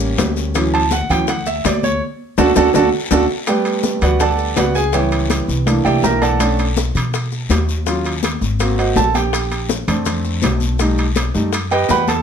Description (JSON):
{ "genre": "Afro-Cuban jazz", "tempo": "164 BPM", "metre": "4/4", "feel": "straight", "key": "D major", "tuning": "A4 = 439 Hz", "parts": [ { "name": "warm baby grand piano", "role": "accompaniment", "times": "0.0-12.2 s", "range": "E3 to B5", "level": "-17 LUFS", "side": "right 3 dB", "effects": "none" }, { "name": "upright bass", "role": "bass", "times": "0.0-12.2 s", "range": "G#1 to B2", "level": "-20 LUFS", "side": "left 1 dB", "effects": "none" }, { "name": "bongos", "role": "percussion", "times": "0.0-12.1 s", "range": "none", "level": "-25 LUFS", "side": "left 8 dB", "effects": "none" }, { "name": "congas", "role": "percussion", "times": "0.0-12.2 s", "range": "none", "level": "-26 LUFS", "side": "left 2 dB", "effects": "none" }, { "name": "maracas", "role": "percussion", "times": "0.0-12.2 s", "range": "none", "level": "-30 LUFS", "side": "left 7 dB", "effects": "none" }, { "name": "guiro", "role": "percussion", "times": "0.2-12.2 s", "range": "none", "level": "-31 LUFS", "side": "left 6 dB", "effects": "none" }, { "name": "timbales", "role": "percussion", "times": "0.2-12.2 s", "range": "none", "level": "-25 LUFS", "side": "right 2 dB", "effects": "none" } ], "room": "moderate studio reverb, RT60 0.7 s", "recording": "none", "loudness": "-14 LUFS", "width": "side -7 dB against mid", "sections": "0.0-3.5 A section; 3.5-12.2 A section", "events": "grand piano solo 0.0-12.2; band accent 2.0-3.5; drum fill 2.6-3.5", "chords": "0.0 A7b9; 0.6 Dmaj9; 2.7 D; 3.5 Gmaj9; 4.9 C#m7b5; 5.7 C13; 6.4 Bm7; 7.9 Ebm7; 8.6 G#9; 9.3 Bbmaj9; 10.8 B7b13" }